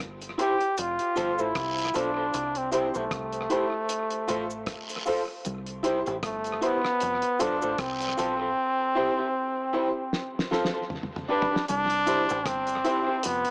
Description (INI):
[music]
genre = roots reggae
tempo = 77 BPM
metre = 4/4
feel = swing 57% on 16ths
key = C major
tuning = A4 = 439 Hz
[part]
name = deep dub fingered electric bass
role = bass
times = 0.0-13.4 s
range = F1 to C2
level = -41 LUFS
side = equal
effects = none
[part]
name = cloth-damped thuddy drum kit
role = drums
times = 0.0-13.5 s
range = hi-hat, kick drum, rim click, snare drum, toms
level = -37 LUFS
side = equal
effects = tape echo
[part]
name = cabasa and guiro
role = percussion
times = 0.2-13.4 s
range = none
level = -42 LUFS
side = equal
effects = none
[part]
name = brilliant trombone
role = melody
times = 0.4-13.5 s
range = A3 to G4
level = -30 LUFS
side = equal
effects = dub echo
[part]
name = electric guitar through a small old amp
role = accompaniment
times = 0.4-13.2 s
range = D4 to C5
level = -36 LUFS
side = equal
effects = dub echo
[part]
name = clear upright piano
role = stabs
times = 0.4-13.0 s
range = D4 to C5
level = -34 LUFS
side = equal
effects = none
[sound]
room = moderate spring reverb, RT60 2.5 s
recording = small speaker sound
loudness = -28 LUFS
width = mono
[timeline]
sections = 0.0-11.7 A section; 11.7-13.5 B section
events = drum fill 10.1-11.7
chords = 0.0 C; 0.8 F; 2.3 C; 3.9 F; 5.4 C; 7.0 F; 8.6 C; 10.1 F; 10.9 G; 11.7 C